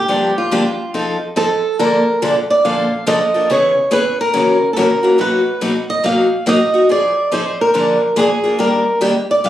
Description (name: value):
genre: jazz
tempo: 141 BPM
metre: 4/4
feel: swing 64% on 8ths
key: unclear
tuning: A4 = 440 Hz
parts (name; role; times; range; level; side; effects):
- picked swing-style acoustic guitar; melody; 0.0-9.5 s; F4 to F5; -15 LUFS; right 1 dB; none
- picked steel-string acoustic guitar; accompaniment; 0.1-9.5 s; Gb2 to A4; -16 LUFS; left 1 dB; none
room: moderate small room reverb, RT60 0.5 s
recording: recorded on a phone in the room, studio reverb, compression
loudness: -13 LUFS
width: side -12 dB against mid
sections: 0.0-1.8 A section; 1.8-9.5 B section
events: none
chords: 0.0 Gm7; 0.9 F7; 1.8 Bbmaj7; 3.5 Dbm7; 4.3 Gb7; 5.2 Bmaj7; 6.9 Fm7; 7.7 Bb7; 8.6 Ebmaj7